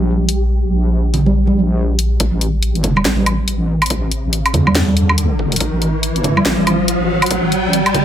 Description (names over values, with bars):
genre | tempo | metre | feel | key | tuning
deep dubstep | 141 BPM | 4/4 | swing 60% on 16ths, half-time | unclear | A4 = 440 Hz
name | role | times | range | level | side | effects
wobble bass | bass | 0.0-8.0 s | A1 to E2 | -17 LUFS | equal | chorus, tube saturation
flickering grainy texture | texture | 0.0-2.2 s | G3 to G4 | -27 LUFS | left 1 dB | built-in reverb
garage drum kit | drums | 0.3-8.0 s | hi-hat, snare drum, woodblock | -18 LUFS | equal | none
congas | percussion | 1.1-8.0 s | none | -19 LUFS | right 2 dB | dub echo
electronic kick drum | drums | 2.2-8.0 s | none | -23 LUFS | equal | overdrive, high-pass filter on kick, high-pass filter on room
riser | sound effects | 3.5-8.0 s | none | -19 LUFS | equal | none
room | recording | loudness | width
light reverb | echo-heavy mix | -13 LUFS | side -10 dB against mid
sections
0.0-2.2 A section; 2.2-8.0 B section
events
build-up 2.2-8.0; riser 3.5-8.0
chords
0.0 Gm/Bb; 2.2 A5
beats
0.07 | 0.50 0.92 1.35 1.77 | 2.20 2.63 3.05 3.48 | 3.90 4.33 4.75 5.18 | 5.61 6.03 6.46 6.88 | 7.31 7.73